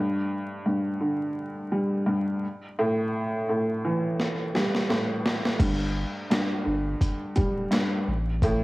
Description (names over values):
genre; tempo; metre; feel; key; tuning
hip hop, boom-bap hip-hop; 85 BPM; 4/4; swing 56% on 16ths; unclear; A4 = 445 Hz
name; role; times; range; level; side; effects
dark upright piano; accompaniment; 0.0-8.6 s; G2 to G3; -26 LUFS; equal; cassette tape, high-pass filter, low-pass filter
boom bap sampler-style drum kit; drums; 4.2-8.6 s; crash cymbal, hi-hat, kick drum, snare drum; -26 LUFS; equal; none
saturated sub bass; bass; 5.6-8.6 s; D1 to A1; -29 LUFS; equal; none
room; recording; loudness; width
light reverb; home recording on cassette, vinyl crackle; -24 LUFS; side -20 dB against mid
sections
0.0-5.6 A section; 5.6-8.6 B section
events
drum fill 4.2-5.6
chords
0.0 G5; 2.4 A5; 5.6 G5; 8.1 A5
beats
0.66 1.36 2.07 | 2.78 3.48 4.19 4.89 | 5.60 6.30 7.01 7.72 | 8.42